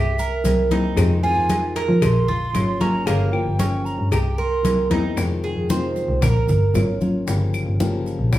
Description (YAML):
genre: latin, Cuban son and guajira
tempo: 114 BPM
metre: 4/4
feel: straight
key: F minor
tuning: A4 = 440 Hz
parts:
  - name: breathy mellow silver concert flute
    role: melody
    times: 0.0-4.9 s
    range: E5 to C6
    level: -26 LUFS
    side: right 2 dB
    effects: none
  - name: Cuban tres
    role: arpeggios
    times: 0.0-7.0 s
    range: Bb3 to C5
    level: -25 LUFS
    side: right 4 dB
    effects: none
  - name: rich double bass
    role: bass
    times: 0.0-8.4 s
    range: G1 to F3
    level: -21 LUFS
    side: equal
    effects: none
  - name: congas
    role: percussion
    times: 0.2-8.4 s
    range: none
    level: -24 LUFS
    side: equal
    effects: none
  - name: maracas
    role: percussion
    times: 0.2-8.4 s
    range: none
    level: -39 LUFS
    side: right 4 dB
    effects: none
  - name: flamenco guitar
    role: accompaniment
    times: 0.4-8.4 s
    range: C3 to G4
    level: -27 LUFS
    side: left 3 dB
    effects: none
  - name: cowbell and bongos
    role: percussion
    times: 0.5-8.4 s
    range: none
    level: -29 LUFS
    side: left 4 dB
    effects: none
  - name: claves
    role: percussion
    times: 1.0-8.4 s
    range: none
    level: -35 LUFS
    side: left 4 dB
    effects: none
room: wet large studio reverb, RT60 0.8 s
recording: heard from further back in the room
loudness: -18 LUFS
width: side -14 dB against mid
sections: 0.0-5.2 A section; 5.2-8.4 B section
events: Cuban tres solo 5.2-8.4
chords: 0.0 C7; 1.0 Fm7; 2.0 Bbm; 3.1 Gm7b5; 4.1 C7; 5.2 Fm7; 6.2 Bbm; 7.3 Gm7b5